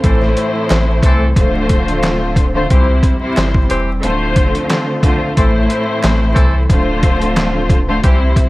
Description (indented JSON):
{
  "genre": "hip hop, boom-bap hip-hop",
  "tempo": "90 BPM",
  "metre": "4/4",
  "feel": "swing 55% on 16ths",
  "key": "D minor",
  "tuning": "A4 = 441 Hz",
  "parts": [
    { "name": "rich studio string section", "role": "accompaniment", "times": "0.0-8.5 s", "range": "A2 to C5", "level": "-16 LUFS", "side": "left 1 dB", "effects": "cassette tape, high-pass filter, low-pass filter" },
    { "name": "hollow soft pad", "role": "sustained chords", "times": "0.0-8.5 s", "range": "D3 to F4", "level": "-26 LUFS", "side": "equal", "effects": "chorus, high-pass filter, low-pass filter" },
    { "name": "bright horn section", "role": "stabs", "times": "0.0-8.2 s", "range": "E3 to A4", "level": "-22 LUFS", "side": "equal", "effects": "high-pass filter, low-pass filter, slapback echo" },
    { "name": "soft dub sub bass", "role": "bass", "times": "0.0-8.3 s", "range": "D1 to C2", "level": "-16 LUFS", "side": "equal", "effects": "none" },
    { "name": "trip hop sampler-style drum kit", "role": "drums", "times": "0.0-8.5 s", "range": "handclaps, hi-hat, kick drum, snare drum", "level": "-15 LUFS", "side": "equal", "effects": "overdrive" },
    { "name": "finger snap", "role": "percussion", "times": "0.7-7.5 s", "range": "none", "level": "-31 LUFS", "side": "right 3 dB", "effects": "none" }
  ],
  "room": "little or no reverb",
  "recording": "vinyl crackle",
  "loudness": "-11 LUFS",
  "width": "side -19 dB against mid",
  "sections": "0.0-8.5 A section",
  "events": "none",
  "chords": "0.0 Am; 1.4 Dm7; 2.7 C; 4.0 Dm7; 5.4 Am; 6.7 Dm7"
}